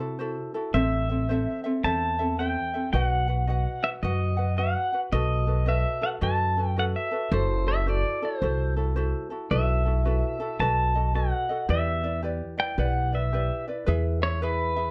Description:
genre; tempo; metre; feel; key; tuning
Hawaiian; 110 BPM; 4/4; swing 64% on 8ths; E minor; A4 = 440 Hz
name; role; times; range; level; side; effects
ukulele; accompaniment; 0.0-14.9 s; C4 to F#5; -33 LUFS; equal; none
upright bass; bass; 0.0-14.9 s; F#1 to C3; -29 LUFS; equal; none
pedal steel guitar; melody; 0.7-14.9 s; B4 to A5; -30 LUFS; equal; none
room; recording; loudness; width
moderate small room reverb, RT60 0.6 s; dark, warm production; -26 LUFS; mono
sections
0.0-13.9 A section; 13.9-14.9 B section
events
none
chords
0.0 F#m7b5; 0.7 Am; 2.9 B; 5.1 B7; 7.3 F#m7b5; 9.5 B7sus4; 10.6 B7; 11.7 Em7; 13.9 E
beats
0.19 | 0.74 1.28 1.83 2.38 | 2.93 3.48 4.03 4.58 | 5.12 5.67 6.22 6.77 | 7.32 7.86 8.41 8.96 | 9.50 10.05 10.60 11.14 | 11.69 12.24 12.78 13.33 | 13.87 14.42

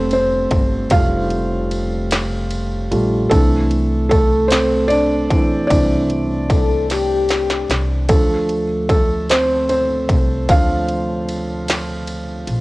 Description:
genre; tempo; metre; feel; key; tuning
six-eight pop ballad; 50 BPM (dotted quarters); 6/8; straight; F major; A4 = 439 Hz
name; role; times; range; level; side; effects
felt-muted upright piano; accompaniment; 0.0-12.6 s; E3 to F5; -18 LUFS; right 1 dB; cassette tape
upright bass; bass; 0.0-12.6 s; F1 to D2; -23 LUFS; equal; none
industrial drum kit; drums; 0.1-12.6 s; kick drum, ride cymbal, snare drum; -19 LUFS; equal; distortion, cassette tape
mellow French horn section; second line; 6.5-7.9 s; G4 to A4; -19 LUFS; left 5 dB; cassette tape
room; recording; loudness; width
small room ambience; home recording on cassette; -15 LUFS; side -20 dB against mid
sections
0.0-12.6 A section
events
felt piano solo 0.0-12.6; drum fill 6.9-8.1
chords
0.0 Fadd9; 3.3 Cadd9; 8.1 Dm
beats
| 0.92 2.12 | 3.31 4.51 | 5.70 6.90 | 8.09 9.29 | 10.49 11.68

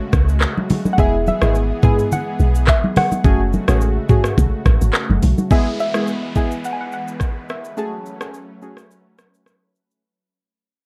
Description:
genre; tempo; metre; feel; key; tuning
afrobeats; 106 BPM; 4/4; swing 55% on 16ths; E major; A4 = 440 Hz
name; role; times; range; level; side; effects
soft round pluck; melody; 0.0-9.4 s; C#5 to A5; -27 LUFS; equal; chorus, analog delay, plate reverb
lush unison pad; sustained chords; 0.0-10.0 s; C#3 to B4; -31 LUFS; equal; chorus
deep log drum bass; bass; 0.1-5.3 s; E1 to C#2; -19 LUFS; equal; none
afro-pop drum kit; drums; 0.1-10.0 s; handclaps, hi-hat, kick drum, rim click, shaker, toms; -19 LUFS; equal; none
congas; percussion; 0.6-5.5 s; none; -23 LUFS; equal; none
warm analog keys; accompaniment; 1.0-8.8 s; G#3 to G#4; -24 LUFS; equal; chorus, phaser, plate reverb
downlifter; sound effects; 5.5-10.0 s; none; -38 LUFS; equal; none
room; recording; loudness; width
light reverb; cassette tape; -17 LUFS; mono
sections
0.0-5.5 A section; 5.5-10.0 B section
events
fade-out 5.5-10.0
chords
0.0 F#madd9; 1.0 E; 3.2 F#madd9; 5.5 E; 7.8 F#madd9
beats
0.41 | 0.98 1.55 2.11 2.68 | 3.25 3.81 4.38 4.94 | 5.51 6.08 6.64 7.21 | 7.77 8.34 8.90 9.47

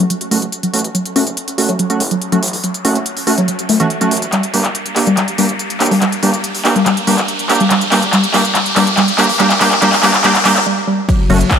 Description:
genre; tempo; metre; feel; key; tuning
driving peak-time techno; 142 BPM; 4/4; straight; unclear; A4 = 440 Hz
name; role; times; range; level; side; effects
woody wave-folded pluck; riff; 0.0-11.4 s; E3 to G4; -17 LUFS; left 1 dB; analog chorus, sidechain pumping, dub echo
gritty driven synth bass; bass; 0.0-11.4 s; F#1 to Bb1; -24 LUFS; equal; sidechain pumping, high-pass filter
techno drum kit; drums; 0.0-11.6 s; handclaps, hi-hat, ride cymbal; -17 LUFS; left 1 dB; overdrive, sidechain pumping on hats, small room ambience, sidechain pumping on cymbals
riser; sound effects; 0.5-10.7 s; none; -21 LUFS; left 1 dB; none
sync-sweep polysynth; stabs; 0.3-11.4 s; A3 to G4; -17 LUFS; right 3 dB; chorus, sidechain pumping, dub echo
analog drone; drone; 11.2-11.6 s; F#3; -23 LUFS; left 4 dB; chorus, sidechain pumping
electronic kick drum; drums; 11.1-11.6 s; none; -14 LUFS; equal; overdrive, small room ambience
room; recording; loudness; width
moderate lush hall reverb, RT60 2.1 s; none; -12 LUFS; side -7 dB against mid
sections
0.0-11.1 A section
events
build-up 0.0-11.1; filter sweep on synth arpeggio sound 0.0-11.1; filter sweep on analog polysynth 0.0-11.1; riser 0.5-10.7; drum fill 4.3-10.7; break 10.7-11.1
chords
0.0 F#m; 4.3 Gm; 11.1 F#m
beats
0.10 0.52 | 0.95 1.37 1.79 2.21 | 2.64 3.06 3.48 3.90 | 4.33 4.75 5.17 5.59 | 6.02 6.44 6.86 7.29 | 7.71 8.13 8.55 8.97 | 9.40 9.82 10.24 10.66 | 11.09 11.51

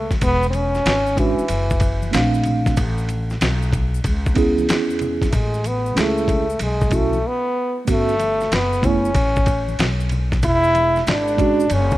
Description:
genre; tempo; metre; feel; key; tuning
hip hop, jazz-hop; 94 BPM; 4/4; swing 66% on 16ths; A major; A4 = 443 Hz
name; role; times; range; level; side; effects
clear French horn; melody; 0.0-12.0 s; E3 to E4; -20 LUFS; equal; none
upright bass; bass; 0.0-12.0 s; E1 to E2; -22 LUFS; equal; none
dusty soul sampler-style drum kit; drums; 0.1-12.0 s; hi-hat, kick drum, ride cymbal, snare drum; -22 LUFS; equal; overdrive
congas and maracas; percussion; 0.1-12.0 s; none; -35 LUFS; left 3 dB; none
mellow tine electric piano; accompaniment; 1.2-11.7 s; G#3 to F5; -21 LUFS; right 3 dB; medium stereo tremolo
room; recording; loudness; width
light reverb; rough home demo mix; -16 LUFS; side -16 dB against mid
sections
0.0-12.0 A section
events
break 7.2-7.9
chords
0.2 E13; 2.1 Bbmaj9; 2.8 Amaj9; 5.3 F#m9/A (rootless); 7.9 Gmaj9#11; 10.4 E13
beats
| 0.22 0.85 1.49 2.13 | 2.77 3.41 4.05 4.68 | 5.32 5.96 6.60 7.24 | 7.88 8.52 9.15 9.79 | 10.43 11.07 11.71

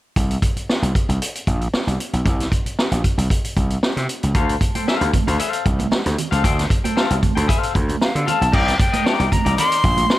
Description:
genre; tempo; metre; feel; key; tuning
funk; 115 BPM; 4/4; straight; unclear; A4 = 440 Hz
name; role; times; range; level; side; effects
gritty slap bass; bass; 0.2-10.0 s; Bb1 to D3; -20 LUFS; equal; overdrive
vintage drum kit; drums; 0.2-10.2 s; crash cymbal, hi-hat, kick drum, snare drum; -20 LUFS; equal; none
clean electric guitar; accompaniment; 4.3-10.1 s; Eb4 to G5; -24 LUFS; left 6 dB; none
congas; percussion; 4.6-10.2 s; none; -28 LUFS; right 6 dB; none
breathy bright jazz flute; melody; 8.0-10.2 s; F5 to C6; -20 LUFS; left 1 dB; none
room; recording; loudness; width
small room ambience; none; -17 LUFS; side -15 dB against mid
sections
0.2-8.5 A section; 8.5-10.2 B section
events
none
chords
0.2 N.C.; 4.3 Dm7; 8.5 Cm9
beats
| 0.16 0.69 1.21 1.73 | 2.25 2.78 3.30 3.83 | 4.35 4.87 5.39 5.92 | 6.44 6.96 7.49 8.01 | 8.53 9.05 9.57 10.10

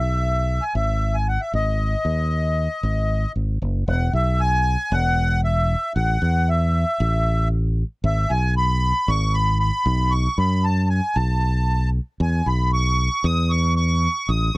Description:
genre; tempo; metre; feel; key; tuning
indie folk with a building arrangement; 115 BPM; 4/4; straight; E major; A4 = 445 Hz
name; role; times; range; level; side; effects
accordion; melody; 0.0-14.6 s; D#5 to D#6; -23 LUFS; equal; light tremolo tuning
fingered electric bass; bass; 0.0-14.6 s; E1 to F#2; -20 LUFS; equal; none
room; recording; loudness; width
little or no reverb; dry, close 1970s-style studio recording; -18 LUFS; side -21 dB against mid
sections
0.0-3.9 A section; 3.9-14.6 A section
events
none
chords
0.0 E; 1.5 G#5; 3.9 E; 6.0 A5; 8.0 G#m; 9.9 B5; 12.2 E5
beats
0.22 0.75 1.27 | 1.79 2.31 2.83 3.35 | 3.88 4.40 4.92 5.44 | 5.96 6.48 7.00 7.52 | 8.04 8.56 9.08 9.60 | 10.12 10.64 11.16 11.68 | 12.20 12.72 13.24 13.77 | 14.29

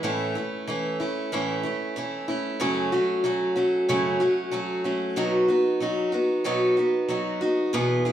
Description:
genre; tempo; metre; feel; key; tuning
country; 94 BPM; 4/4; straight; unclear; A4 = 438 Hz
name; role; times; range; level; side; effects
picked steel-string acoustic guitar; solo; 0.0-8.1 s; E2 to G#4; -22 LUFS; equal; none
room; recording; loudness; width
wet recital hall reverb, RT60 1.4 s; small room ambience; -22 LUFS; side -11 dB against mid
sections
0.0-8.1 A section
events
none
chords
0.0 A; 2.6 F#m; 5.2 B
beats
| 0.04 0.68 1.32 1.96 | 2.60 3.25 3.89 4.53 | 5.17 5.81 6.45 7.09 | 7.73

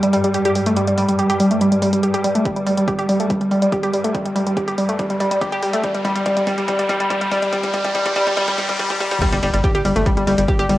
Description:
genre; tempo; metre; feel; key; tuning
driving peak-time techno; 142 BPM; 4/4; straight; unclear; A4 = 440 Hz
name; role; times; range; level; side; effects
analog pluck; riff; 0.0-10.8 s; G3 to G4; -17 LUFS; equal; chorus, sidechain pumping, cassette tape, analog delay
swarming drone; drone; 0.0-9.3 s; G2 to G3; -25 LUFS; right 1 dB; built-in reverb, sidechain pumping, cassette tape
punchy analog drum machine; drums; 0.0-10.8 s; crash cymbal, hi-hat, ride cymbal; -32 LUFS; equal; overdrive, sidechain pumping on hats, sidechain pumping on cymbals
electronic kick drum; drums; 2.5-10.6 s; none; -25 LUFS; equal; none
riser, noise sweep and impact; sound effects; 4.2-10.8 s; none; -28 LUFS; equal; none
tight sequencer bass; bass; 9.3-10.8 s; G1; -22 LUFS; equal; sidechain pumping
room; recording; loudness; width
wet spring reverb, RT60 1.4 s, digital ambience; home recording on cassette, high-pass filter; -16 LUFS; side -15 dB against mid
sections
0.0-9.2 A section; 9.2-10.8 B section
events
build-up 0.0-9.2; filter sweep on synth arpeggio sound 0.0-9.2; filter sweep 0.0-9.2; drum fill 2.5-9.2; riser 4.2-9.2; noise sweep 7.5-9.2; drop 9.2-10.8; impact 9.2-10.8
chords
0.0 Gsus2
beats
0.34 | 0.77 1.19 1.61 2.03 | 2.46 2.88 3.30 3.72 | 4.15 4.57 4.99 5.41 | 5.84 6.26 6.68 7.10 | 7.53 7.95 8.37 8.79 | 9.22 9.64 10.06 10.48

